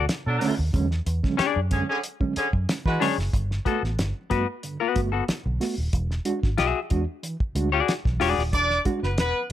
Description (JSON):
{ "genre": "funk", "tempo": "92 BPM", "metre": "4/4", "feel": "straight", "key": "unclear", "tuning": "A4 = 436 Hz", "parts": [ { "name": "semi-hollow electric guitar", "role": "accompaniment", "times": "0.0-8.4 s", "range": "B3 to E5", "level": "-25 LUFS", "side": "left 9 dB", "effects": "plate reverb" }, { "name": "mellow reed electric piano", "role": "stabs", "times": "0.0-9.1 s", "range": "G2 to F#4", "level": "-29 LUFS", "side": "right 4 dB", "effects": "fast tremolo" }, { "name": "vintage muted fingered electric bass", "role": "bass", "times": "0.0-9.3 s", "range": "D#1 to E3", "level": "-26 LUFS", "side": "equal", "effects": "none" }, { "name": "cloth-damped thuddy drum kit", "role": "drums", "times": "0.1-9.5 s", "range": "hi-hat, kick drum, snare drum", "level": "-27 LUFS", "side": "equal", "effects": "none" }, { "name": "warm horn section", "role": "second line", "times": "0.3-3.1, 8.5-9.4 s", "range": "D3 to D5", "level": "-25 LUFS", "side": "equal", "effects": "none" } ], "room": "light reverb", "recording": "none", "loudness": "-22 LUFS", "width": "side -12 dB against mid", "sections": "0.0-3.3 A section; 3.3-9.5 B section", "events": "none", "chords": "0.0 Bm7; 0.7 E13; 3.3 Gmaj9; 5.9 E9" }